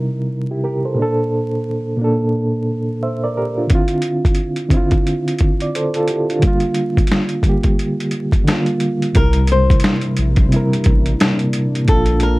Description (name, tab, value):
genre	lo-fi hip hop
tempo	88 BPM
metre	4/4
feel	swing 61% on 16ths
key	unclear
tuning	A4 = 441 Hz
part	mellow reed electric piano	accompaniment	0.0-12.4 s	Bb2 to E5	-18 LUFS	right 1 dB	fast tremolo, cassette tape
part	boom bap sampler-style drum kit	drums	3.7-12.4 s	hi-hat, kick drum, snare drum	-16 LUFS	equal	overdrive
part	flamenco guitar	melody	9.2-12.4 s	A4 to C5	-20 LUFS	left 2 dB	plate reverb
part	dark analog pad	sustained chords	9.2-12.4 s	C3 to E4	-23 LUFS	left 1 dB	chorus
part	saturated sub bass	bass	9.2-12.4 s	A1 to C2	-16 LUFS	equal	none
room	moderate small room reverb, RT60 0.6 s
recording	vinyl crackle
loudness	-14 LUFS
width	side -21 dB against mid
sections	0.0-9.2 A section; 9.2-12.4 B section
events	none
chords	0.0 C7; 1.0 Bbmaj7; 3.7 Dm9; 6.4 Gm7/D; 9.2 C7; 11.9 Bbmaj7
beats	0.29 | 0.97 1.65 2.33 3.02 | 3.70 4.38 5.06 5.74 | 6.42 7.11 7.79 8.47 | 9.15 9.83 10.52 11.20 | 11.88